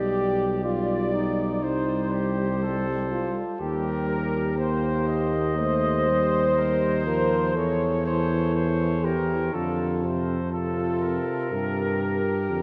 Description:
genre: classical, brass quintet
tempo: 61 BPM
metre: 4/4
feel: straight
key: unclear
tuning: A4 = 440 Hz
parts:
  - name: mellow trumpet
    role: melody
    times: 0.0-12.6 s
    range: A4 to D5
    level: -35 LUFS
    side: equal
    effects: none
  - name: warm flugelhorn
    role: second line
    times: 0.0-12.6 s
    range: G4 to Eb5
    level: -34 LUFS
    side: equal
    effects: none
  - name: mellow French horn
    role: accompaniment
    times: 0.0-12.6 s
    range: Eb4 to C5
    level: -30 LUFS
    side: equal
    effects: none
  - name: mellow euphonium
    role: accompaniment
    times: 0.0-12.6 s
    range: C3 to Bb3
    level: -34 LUFS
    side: equal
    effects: none
  - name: mellow tuba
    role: bass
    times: 0.0-12.6 s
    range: B1 to G2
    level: -30 LUFS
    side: equal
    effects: none
room: wet cathedral reverb, RT60 5.8 s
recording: in a vast, echoing space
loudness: -25 LUFS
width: mono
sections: 0.0-12.6 A section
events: none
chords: 0.0 G/B; 1.6 Cm; 3.6 Cm7/Eb; 7.6 C13b9/E; 9.5 F; 11.5 Gm

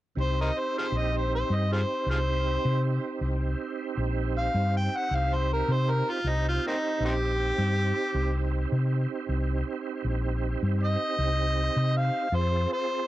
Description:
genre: blues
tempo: 79 BPM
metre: 4/4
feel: straight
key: C minor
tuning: A4 = 440 Hz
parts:
  - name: overdriven harmonica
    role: melody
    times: 0.2-13.1 s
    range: Bb3 to G5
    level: -29 LUFS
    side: left 1 dB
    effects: none
  - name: bright tonewheel organ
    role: accompaniment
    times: 0.2-13.1 s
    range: C4 to C5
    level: -33 LUFS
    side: right 7 dB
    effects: slow rotary speaker, overdrive, chorus vibrato
  - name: hollow-body short-scale fingered electric bass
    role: bass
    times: 0.2-12.7 s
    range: Bb1 to C3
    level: -26 LUFS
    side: left 1 dB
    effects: none
room: little or no reverb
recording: dry, close 1970s-style studio recording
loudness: -25 LUFS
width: side -15 dB against mid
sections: 0.2-13.1 A section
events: harmonica solo 0.2-13.1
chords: 0.2 Cm; 12.3 Fm

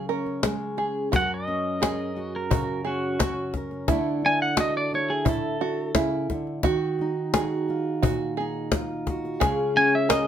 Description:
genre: acoustic folk duo or small band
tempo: 87 BPM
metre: 4/4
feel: straight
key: unclear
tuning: A4 = 439 Hz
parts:
  - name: fingerpicked steel-string acoustic guitar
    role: accompaniment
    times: 0.0-10.3 s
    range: F#2 to A#4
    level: -28 LUFS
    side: equal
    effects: none
  - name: open-back banjo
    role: arpeggios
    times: 0.0-10.3 s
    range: E4 to A#4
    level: -30 LUFS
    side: right 6 dB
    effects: none
  - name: cajon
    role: percussion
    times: 0.3-10.3 s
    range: none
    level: -25 LUFS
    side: left 3 dB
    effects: none
  - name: pedal steel guitar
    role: melody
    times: 1.2-10.3 s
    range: F#4 to G#5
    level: -25 LUFS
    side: equal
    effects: none
room: moderate studio reverb, RT60 0.6 s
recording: none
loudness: -23 LUFS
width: side -9 dB against mid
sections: 0.0-1.1 A section; 1.1-10.3 B section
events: pedal steel guitar solo 1.1-10.3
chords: 0.0 C#5; 1.1 F#add9; 3.9 Dsus2; 6.7 D#madd9; 9.4 C#

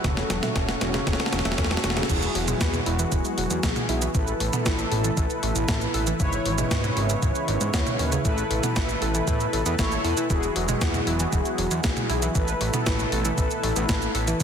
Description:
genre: synthwave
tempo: 117 BPM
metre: 4/4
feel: straight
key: unclear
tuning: A4 = 439 Hz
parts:
  - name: lush unison pad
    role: sustained chords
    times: 0.0-14.4 s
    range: A2 to A4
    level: -30 LUFS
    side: equal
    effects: chorus, sidechain pumping
  - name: analog pluck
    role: arpeggios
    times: 0.0-14.4 s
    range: C#3 to A4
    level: -32 LUFS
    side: right 2 dB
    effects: chorus, ping-pong delay
  - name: mellow synth brass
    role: stabs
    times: 0.0-14.4 s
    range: C#4 to C#5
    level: -29 LUFS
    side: equal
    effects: chorus, cassette tape, ping-pong delay
  - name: fat analog bass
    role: bass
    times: 0.0-14.4 s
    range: E1 to A2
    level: -28 LUFS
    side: equal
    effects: tube saturation
  - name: electronic kick drum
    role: drums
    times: 0.0-14.4 s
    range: none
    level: -27 LUFS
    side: equal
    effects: none
  - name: gated 80s digital drum machine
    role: drums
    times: 0.0-14.4 s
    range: cabasa, crash cymbal, hi-hat, snare drum, toms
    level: -28 LUFS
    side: equal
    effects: gated reverb, gated reverb snare
room: light reverb, digital ambience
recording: dense, heavily limited modern master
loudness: -22 LUFS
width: side -8 dB against mid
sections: 0.0-2.1 A section; 2.1-14.4 B section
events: drum fill 0.0-2.1; filter sweep on analog polysynth 0.0-2.1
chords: 0.0 F#m/E; 2.1 Eadd9; 4.1 Asus2; 6.2 C#m7/G#; 8.2 Asus2; 10.3 Eadd9; 12.4 Asus2

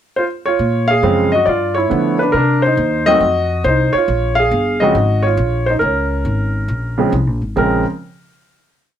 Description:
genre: jazz piano trio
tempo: 138 BPM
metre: 4/4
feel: swing 68% on 8ths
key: Bb minor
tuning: A4 = 440 Hz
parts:
  - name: warm concert grand piano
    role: melody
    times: 0.2-7.8 s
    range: Db3 to F5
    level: -14 LUFS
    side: right 1 dB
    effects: none
  - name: upright bass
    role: bass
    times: 0.6-7.8 s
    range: G1 to D3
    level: -19 LUFS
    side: left 1 dB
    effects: none
room: moderate studio ambience, RT60 0.5 s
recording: none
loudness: -13 LUFS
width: side -10 dB against mid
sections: 0.0-0.6 pickup bar; 0.6-7.6 A section; 7.6-9.0 final chord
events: none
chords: 0.0 N.C.; 0.6 Bbm7; 1.5 G7; 2.3 Cmadd9; 3.2 F5; 4.1 Bbm7; 7.6 N.C.

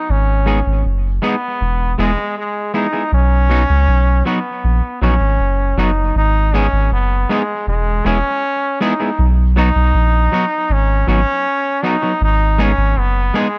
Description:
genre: roots reggae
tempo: 79 BPM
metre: 4/4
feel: straight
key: B major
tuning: A4 = 440 Hz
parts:
  - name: brilliant trombone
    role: melody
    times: 0.0-13.6 s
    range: G#3 to D#4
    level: -21 LUFS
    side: equal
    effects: tape echo
  - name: soft dub sub bass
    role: bass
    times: 0.1-13.3 s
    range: E1 to C#2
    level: -17 LUFS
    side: equal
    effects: none
  - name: semi-hollow electric guitar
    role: accompaniment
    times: 0.5-13.5 s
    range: F#3 to G#4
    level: -22 LUFS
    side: equal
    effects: tape echo
room: little or no reverb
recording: none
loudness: -16 LUFS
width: mono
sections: 0.0-6.2 A section; 6.2-13.6 B section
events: none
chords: 0.1 G#m; 1.6 E; 3.1 B; 6.2 G#m; 7.7 E; 9.2 B; 12.2 G#m

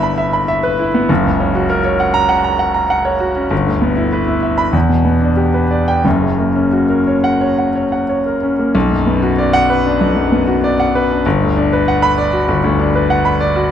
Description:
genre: classical, virtuoso piano study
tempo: 88-101 BPM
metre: 4/4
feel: rubato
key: B minor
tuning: A4 = 440 Hz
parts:
  - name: clear grand piano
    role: solo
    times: 0.0-13.7 s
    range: F#1 to B5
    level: -12 LUFS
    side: equal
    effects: none
room: wet recital hall reverb, RT60 1.8 s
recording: dark, warm production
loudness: -12 LUFS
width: side -9 dB against mid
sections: 0.0-8.8 A section; 8.8-13.7 B section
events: none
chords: 0.0 Em/G; 1.1 F#; 3.5 G6; 4.7 Em7; 6.0 F#; 8.8 Bm; 11.2 Gmaj7

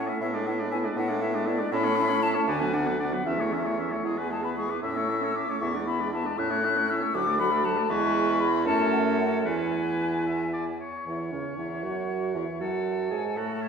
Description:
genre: quick classical-period movement for wind quintet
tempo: 78 BPM (dotted quarters)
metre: 6/8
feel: rubato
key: unclear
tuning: A4 = 444 Hz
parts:
  - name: mellow hollow silver concert flute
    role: melody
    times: 0.0-13.7 s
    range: C#5 to F#6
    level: -30 LUFS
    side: left 5 dB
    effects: none
  - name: clear oboe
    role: second line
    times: 0.0-13.7 s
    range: E4 to F#5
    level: -34 LUFS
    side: left 2 dB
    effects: none
  - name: warm French horn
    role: accompaniment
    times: 0.0-13.7 s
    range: C#3 to C#4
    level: -32 LUFS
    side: equal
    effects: none
  - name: warm clarinet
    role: accompaniment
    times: 0.0-13.7 s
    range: B3 to A4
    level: -31 LUFS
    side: right 4 dB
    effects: none
  - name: warm bassoon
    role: bass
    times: 0.0-13.7 s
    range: C#2 to A2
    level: -31 LUFS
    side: right 2 dB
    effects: none
room: wet scoring stage reverb, RT60 1.7 s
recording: heard from further back in the room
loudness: -24 LUFS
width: side -6 dB against mid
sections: 0.0-11.1 A section; 11.1-13.7 B section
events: none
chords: 0.2 E7/A; 1.7 A; 2.5 Bm/D; 3.3 A/E; 4.0 E; 4.8 A; 5.6 E7; 6.4 A; 7.1 D; 7.9 E; 8.7 F#m; 9.5 E; 11.1 C#madd11; 12.6 F#madd9

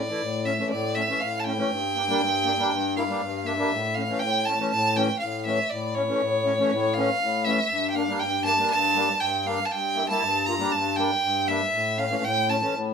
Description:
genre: klezmer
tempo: 120 BPM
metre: 4/4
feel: straight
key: unclear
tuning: A4 = 440 Hz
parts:
  - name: clear violin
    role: melody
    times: 0.0-12.7 s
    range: C#5 to Bb5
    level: -24 LUFS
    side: right 2 dB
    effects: none
  - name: accordion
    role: accompaniment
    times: 0.0-12.9 s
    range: G2 to F4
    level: -26 LUFS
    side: left 3 dB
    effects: none
room: wet studio reverb, RT60 0.5 s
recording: band playing live in one room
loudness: -22 LUFS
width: side -6 dB against mid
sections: 0.0-3.7 A section; 3.7-12.9 B section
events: none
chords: 0.0 A; 1.7 Gm; 3.7 A; 7.7 Gm; 11.7 A

